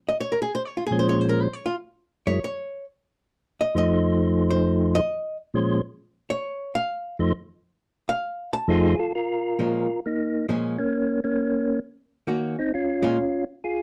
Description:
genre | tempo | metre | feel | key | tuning
jazz | 134 BPM | 4/4 | swing 67% on 8ths | Bb minor | A4 = 440 Hz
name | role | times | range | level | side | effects
archtop guitar, miked and amplified | accompaniment | 0.1-13.2 s | Bb2 to A5 | -28 LUFS | equal | none
percussive tonewheel organ | melody | 0.9-13.8 s | F2 to C5 | -24 LUFS | equal | slow rotary speaker
room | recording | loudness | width
moderate small room reverb, RT60 0.6 s | dry, close 1970s-style studio recording | -25 LUFS | mono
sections
0.0-9.1 A section; 9.1-13.8 B section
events
hollow-body jazz guitar solo 0.0-9.1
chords
0.0 Bbm7; 2.0 Gb5; 3.7 F7; 5.5 Bbm7; 7.3 F7; 9.1 Bbm7; 10.9 Ebm7; 12.7 Bbm7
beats
| 0.16 0.61 1.06 1.51 | 1.96 2.40 2.85 3.30 | 3.75 4.20 4.64 5.09 | 5.54 5.99 6.44 6.89 | 7.33 7.78 8.23 8.68 | 9.13 9.58 10.03 10.48 | 10.93 11.38 11.83 12.28 | 12.73 13.18 13.63

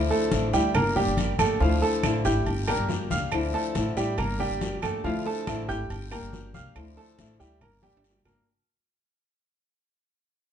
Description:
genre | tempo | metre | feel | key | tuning
latin, Cuban son and guajira | 140 BPM | 4/4 | straight | D minor | A4 = 439 Hz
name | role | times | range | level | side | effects
flamenco guitar | accompaniment | 0.0-8.5 s | D3 to G4 | -30 LUFS | left 4 dB | none
clear grand piano | arpeggios | 0.0-8.4 s | F3 to G6 | -28 LUFS | right 3 dB | none
upright bass | bass | 0.0-8.4 s | G1 to D2 | -30 LUFS | equal | none
congas | percussion | 0.1-8.4 s | none | -33 LUFS | left 3 dB | none
agogo bells and timbales | percussion | 0.3-8.5 s | none | -36 LUFS | right 5 dB | none
guiro | percussion | 0.3-8.5 s | none | -40 LUFS | left 6 dB | none
claves | percussion | 0.7-8.5 s | none | -38 LUFS | right 8 dB | none
room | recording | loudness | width
moderate large studio reverb, RT60 0.9 s | heard from further back in the room, nothing above 10.4 kHz | -23 LUFS | side -9 dB against mid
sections
0.0-1.6 A section; 1.6-8.5 B section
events
fade-out 1.6-8.5; drum fill 7.8-8.5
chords
0.0 Dmadd9; 0.7 Gm; 1.6 Dmadd9; 2.5 Gm; 3.3 Dmadd9; 4.2 Gm; 5.0 Dmadd9; 5.9 Gm; 6.8 Dmadd9; 7.6 Gm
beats
0.32 0.75 1.18 | 1.61 2.04 2.46 2.90 | 3.32 3.75 4.18 4.61 | 5.04 5.47 5.90 6.33 | 6.76 7.19 7.62 8.04

